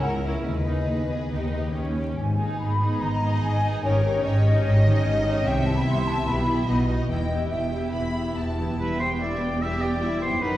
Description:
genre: classical, dramatic, fast romantic movement for symphony orchestra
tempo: 138-151 BPM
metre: 4/4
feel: rubato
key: G# minor, E minor from 5.5 s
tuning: A4 = 440 Hz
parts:
  - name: rich symphonic violin section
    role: melody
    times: 0.0-10.6 s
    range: F#4 to G5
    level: -37 LUFS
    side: left 2 dB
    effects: none
  - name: large flute ensemble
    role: second line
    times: 0.0-8.6 s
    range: C#5 to C6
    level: -29 LUFS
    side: left 2 dB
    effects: none
  - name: rich symphonic violin section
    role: second line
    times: 0.0-10.6 s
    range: D#4 to B5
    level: -34 LUFS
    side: left 1 dB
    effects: none
  - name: rich symphonic viola section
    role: accompaniment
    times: 0.0-10.6 s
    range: D#3 to G4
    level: -31 LUFS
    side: right 2 dB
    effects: none
  - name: concert harp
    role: arpeggios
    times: 0.0-10.6 s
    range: F#2 to A4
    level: -31 LUFS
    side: left 2 dB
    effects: none
  - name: rich symphonic cello section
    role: bass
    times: 0.0-10.6 s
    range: C#2 to C3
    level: -27 LUFS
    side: equal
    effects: none
  - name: rich symphonic double bass section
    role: bass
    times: 0.0-10.6 s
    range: E1 to D#2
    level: -28 LUFS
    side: equal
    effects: none
  - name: clear oboe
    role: second line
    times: 8.8-10.6 s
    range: B4 to E5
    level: -27 LUFS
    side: equal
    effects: none
room: wet recital hall reverb, RT60 1.5 s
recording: heard from further back in the room, vinyl crackle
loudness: -22 LUFS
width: side -14 dB against mid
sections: 0.0-8.8 A section; 8.8-10.6 B section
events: none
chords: 0.5 G#m/D#; 1.3 D#; 2.2 G#m; 3.8 D#7/G#; 5.5 Cmaj7; 6.3 Em/B; 6.7 B; 7.1 Em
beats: 0.03 | 0.46 0.89 1.32 1.75 | 2.18 2.60 3.01 3.43 | 3.84 4.25 4.66 5.06 | 5.46 5.86 6.27 6.68 | 7.09 7.52 7.95 8.37 | 8.80 9.21 9.62 10.02 | 10.43

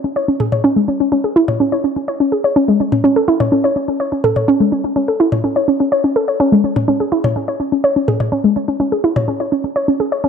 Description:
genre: melodic techno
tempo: 125 BPM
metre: 4/4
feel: straight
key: C# minor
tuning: A4 = 440 Hz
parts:
  - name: woody wave-folded pluck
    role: arpeggios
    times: 0.0-10.3 s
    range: G#3 to C#5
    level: -14 LUFS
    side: equal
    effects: chorus, ping-pong delay
  - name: electronic toms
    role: drums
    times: 0.4-9.3 s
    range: none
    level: -19 LUFS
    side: left 1 dB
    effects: small room ambience
room: moderate digital room reverb, RT60 1.1 s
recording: none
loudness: -13 LUFS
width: side -7 dB against mid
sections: 0.0-10.3 A section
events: none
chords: none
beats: 0.16 0.64 | 1.12 1.60 2.08 2.56 | 3.04 3.52 4.00 4.48 | 4.96 5.44 5.92 6.40 | 6.88 7.36 7.84 8.32 | 8.80 9.28 9.76 10.24

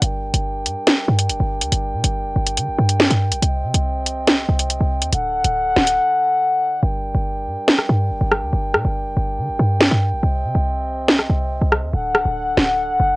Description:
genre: hip hop, drill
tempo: 141 BPM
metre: 4/4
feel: half-time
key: G harmonic minor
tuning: A4 = 442 Hz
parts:
  - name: mellow brass ensemble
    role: sustained chords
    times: 0.0-13.2 s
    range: C3 to G5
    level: -22 LUFS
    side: left 1 dB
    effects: cassette tape
  - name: short 808-style bass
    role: bass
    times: 0.0-13.2 s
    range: C1 to D3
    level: -20 LUFS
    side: equal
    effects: none
  - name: drill drum kit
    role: drums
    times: 0.0-12.7 s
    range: hi-hat, rim click, snare drum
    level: -16 LUFS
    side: equal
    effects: vintage 12-bit sampler grit, cassette tape
room: light reverb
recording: home recording on cassette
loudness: -16 LUFS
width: side -22 dB against mid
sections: 0.0-13.2 A section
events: drums muted 6.0-6.8; hi-hats muted 6.8-13.2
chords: 0.0 Gm; 3.4 Cm; 5.1 D; 6.8 Gm; 10.2 Cm; 11.9 D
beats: | 0.02 0.45 0.87 1.30 | 1.72 2.15 2.57 3.00 | 3.42 3.85 4.28 4.70 | 5.13 5.55 5.98 6.40 | 6.83 7.25 7.68 8.10 | 8.53 8.96 9.38 9.81 | 10.23 10.66 11.08 11.51 | 11.93 12.36 12.79

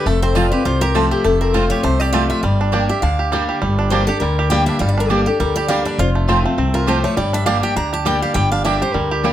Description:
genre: bluegrass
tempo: 202 BPM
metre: 4/4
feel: swing 56% on 8ths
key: G minor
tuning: A4 = 443 Hz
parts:
  - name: picked steel-string acoustic guitar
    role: melody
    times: 0.0-9.3 s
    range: G4 to Bb5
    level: -21 LUFS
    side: left 2 dB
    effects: none
  - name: picked steel-string acoustic guitar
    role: accompaniment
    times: 0.0-9.3 s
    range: F2 to G4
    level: -21 LUFS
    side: left 3 dB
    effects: none
  - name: bluegrass banjo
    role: arpeggios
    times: 0.0-9.3 s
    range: G3 to G4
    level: -22 LUFS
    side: right 5 dB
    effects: none
  - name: upright bass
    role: bass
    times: 0.1-9.3 s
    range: F1 to D2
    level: -20 LUFS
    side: equal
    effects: none
  - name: mandolin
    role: stabs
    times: 0.4-9.3 s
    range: Bb3 to A5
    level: -22 LUFS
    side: right 7 dB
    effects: none
room: light reverb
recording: close, detailed microphones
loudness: -15 LUFS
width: side -12 dB against mid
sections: 0.0-9.3 A section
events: none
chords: 0.1 F; 2.4 Gm; 6.0 F; 7.2 Gm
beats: | 0.06 0.35 0.65 0.95 | 1.24 1.54 1.84 2.13 | 2.43 2.73 3.02 3.32 | 3.62 3.91 4.21 4.50 | 4.80 5.10 5.39 5.69 | 5.99 6.28 6.58 6.87 | 7.17 7.47 7.76 8.06 | 8.35 8.65 8.95 9.24

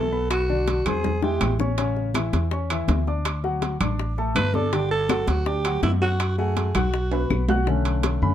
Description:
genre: Afro-Cuban jazz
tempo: 163 BPM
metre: 4/4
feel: straight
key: unclear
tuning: A4 = 443 Hz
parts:
  - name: growling alto saxophone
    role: melody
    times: 0.0-1.6, 4.4-7.5 s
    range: E4 to B4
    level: -26 LUFS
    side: right 2 dB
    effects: plate reverb
  - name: warm baby grand piano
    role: accompaniment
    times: 0.0-8.3 s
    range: C#3 to F#6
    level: -28 LUFS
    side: left 3 dB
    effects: none
  - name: upright bass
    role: bass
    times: 0.0-8.3 s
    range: G1 to F#2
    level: -24 LUFS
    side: equal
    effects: none
  - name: bongos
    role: percussion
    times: 0.1-8.2 s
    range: none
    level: -32 LUFS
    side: left 7 dB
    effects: none
  - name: claves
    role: percussion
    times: 0.3-7.5 s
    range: none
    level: -36 LUFS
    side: left 6 dB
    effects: none
  - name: congas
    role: percussion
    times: 0.3-8.3 s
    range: none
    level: -30 LUFS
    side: left 3 dB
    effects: none
  - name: timbales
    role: percussion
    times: 0.3-8.2 s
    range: none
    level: -30 LUFS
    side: right 5 dB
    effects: none
room: light reverb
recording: dark, warm production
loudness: -21 LUFS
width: side -10 dB against mid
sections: 0.0-7.7 A section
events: drum fill 0.7-1.8, 7.1-7.7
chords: 0.3 Bm; 1.0 Eaug; 1.8 A; 3.3 D; 4.7 G5; 6.2 F#madd9; 6.9 B5; 7.7 Bm7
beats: | 0.30 0.67 1.04 1.41 | 1.78 2.15 2.52 2.88 | 3.25 3.62 3.99 4.36 | 4.72 5.09 5.46 5.83 | 6.20 6.57 6.93 7.30 | 7.67 8.04

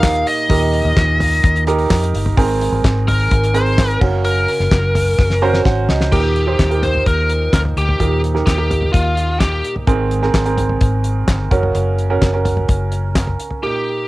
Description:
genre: piano-driven pop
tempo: 128 BPM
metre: 4/4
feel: straight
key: Eb major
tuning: A4 = 442 Hz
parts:
  - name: biting lead guitar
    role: melody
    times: 0.0-9.7, 13.6-14.1 s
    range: F4 to F5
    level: -19 LUFS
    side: left 1 dB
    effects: overdrive, cassette tape, plate reverb
  - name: warm concert grand piano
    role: accompaniment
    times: 0.0-14.1 s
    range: Ab2 to Bb5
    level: -20 LUFS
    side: right 4 dB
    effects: cassette tape
  - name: vintage muted fingered electric bass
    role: bass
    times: 0.0-13.4 s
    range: Gb1 to F2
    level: -18 LUFS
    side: left 1 dB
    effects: none
  - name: damped 70s drum kit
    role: drums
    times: 0.0-13.6 s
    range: crash cymbal, handclaps, hi-hat, kick drum, snare drum, toms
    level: -18 LUFS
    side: left 1 dB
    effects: none
room: light reverb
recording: home recording on cassette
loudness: -13 LUFS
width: side -18 dB against mid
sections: 0.0-6.1 A section; 6.1-13.6 B section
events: drum fill 5.2-6.1; grand piano fill 5.2-6.1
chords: 0.0 Eb; 2.4 Abadd9; 4.0 Gb; 6.1 Eb; 9.9 Abadd9; 11.5 Gb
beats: 0.03 | 0.50 0.97 1.44 1.91 | 2.38 2.84 3.31 3.78 | 4.25 4.72 5.19 5.66 | 6.12 6.59 7.06 7.53 | 8.00 8.47 8.94 9.41 | 9.88 10.34 10.81 11.28 | 11.75 12.22 12.69 13.16 | 13.63

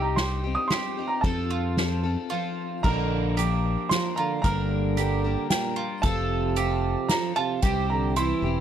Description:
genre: indie folk with a building arrangement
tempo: 113 BPM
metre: 3/4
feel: straight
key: Bb lydian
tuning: A4 = 440 Hz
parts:
  - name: warm upright piano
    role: melody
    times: 0.0-8.6 s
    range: G5 to Eb6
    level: -30 LUFS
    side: right 2 dB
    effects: none
  - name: picked twelve-string acoustic guitar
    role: accompaniment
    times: 0.0-8.6 s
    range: G2 to Bb4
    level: -31 LUFS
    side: left 11 dB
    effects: none
  - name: mandolin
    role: arpeggios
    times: 0.0-8.6 s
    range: E4 to Bb4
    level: -32 LUFS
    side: right 8 dB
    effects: none
  - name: fingered electric bass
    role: bass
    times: 0.0-8.6 s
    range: E1 to F2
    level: -27 LUFS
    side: equal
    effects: none
  - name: soft-mallet drum kit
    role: drums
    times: 0.2-8.3 s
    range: crash cymbal, hi-hat, kick drum, ride cymbal, snare drum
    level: -29 LUFS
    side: equal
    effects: none
  - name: mellow French horn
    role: second line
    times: 2.8-8.6 s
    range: Bb2 to F3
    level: -30 LUFS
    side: right 10 dB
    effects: none
room: little or no reverb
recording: dry, close 1970s-style studio recording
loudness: -23 LUFS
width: side -9 dB against mid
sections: 0.0-2.8 A section; 2.8-8.6 B section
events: break 2.3-2.8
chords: 0.0 Cm; 1.2 F; 2.8 Bb; 4.4 Gm; 6.0 F; 7.6 C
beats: 0.18 0.71 | 1.24 1.78 2.31 | 2.85 3.38 3.91 | 4.45 4.98 5.51 | 6.04 6.58 7.11 | 7.64 8.18

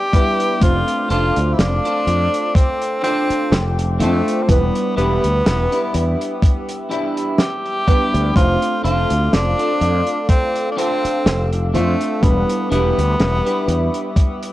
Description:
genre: vaporwave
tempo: 62 BPM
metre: 4/4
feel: swing 55% on 16ths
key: F lydian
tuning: A4 = 441 Hz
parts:
  - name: bright tenor saxophone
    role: melody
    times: 0.0-14.5 s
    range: A3 to G4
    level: -21 LUFS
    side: equal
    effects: tape echo
  - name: warbly lo-fi synth keys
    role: accompaniment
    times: 0.0-14.5 s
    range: G3 to C5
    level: -24 LUFS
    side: equal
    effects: analog chorus
  - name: warbly tape-like pad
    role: sustained chords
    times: 0.0-14.5 s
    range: G4 to E6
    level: -30 LUFS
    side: left 1 dB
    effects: chorus, built-in reverb
  - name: clean electric guitar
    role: riff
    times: 0.1-14.1 s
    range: D4 to C5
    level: -25 LUFS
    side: equal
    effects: lush chorus, tape echo
  - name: electronic kick drum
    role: drums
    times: 0.1-14.4 s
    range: none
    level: -14 LUFS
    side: equal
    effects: none
  - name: warm soul drum kit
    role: drums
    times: 0.1-14.5 s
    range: hi-hat, snare drum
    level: -22 LUFS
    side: equal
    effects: none
  - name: fretless electric bass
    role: bass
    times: 0.6-13.9 s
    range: E1 to F2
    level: -19 LUFS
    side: equal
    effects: analog chorus
room: light reverb, small room ambience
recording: worn, warbling old tape, cassette tape, warbly pitch drift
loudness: -15 LUFS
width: side -15 dB against mid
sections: 0.0-14.5 A section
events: none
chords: 0.0 Em7; 0.6 F6; 4.5 Em7; 8.4 F6; 12.2 Em7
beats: | 0.61 1.58 2.55 3.52 | 4.49 5.45 6.42 7.39 | 8.36 9.32 10.29 11.26 | 12.23 13.20 14.16

